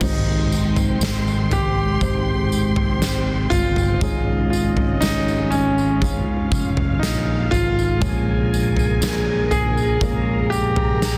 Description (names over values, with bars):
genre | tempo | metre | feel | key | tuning
pop ballad | 60 BPM | 4/4 | straight | Ab major | A4 = 441 Hz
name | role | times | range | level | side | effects
warm baby grand piano | melody | 0.0-11.2 s | Db4 to Ab4 | -27 LUFS | equal | none
mellow French horn section | second line | 0.0-11.2 s | C4 to Ab4 | -32 LUFS | equal | none
dark upright piano | accompaniment | 0.0-11.2 s | Ab2 to C5 | -30 LUFS | equal | none
muted studio string section | sustained chords | 0.0-11.2 s | Ab3 to C6 | -33 LUFS | equal | none
fretless electric bass | bass | 0.0-11.2 s | F1 to Bb1 | -25 LUFS | equal | subtle chorus
huge arena drum kit | drums | 0.0-11.2 s | crash cymbal, kick drum, snare drum, toms | -25 LUFS | equal | none
tambourine | percussion | 0.0-11.2 s | none | -36 LUFS | equal | none
room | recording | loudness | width
light reverb, small room ambience | dense, heavily limited modern master | -20 LUFS | mono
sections
0.0-11.2 A section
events
none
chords
0.0 Abmaj7; 4.0 Dbadd9/Ab; 8.0 Bbm7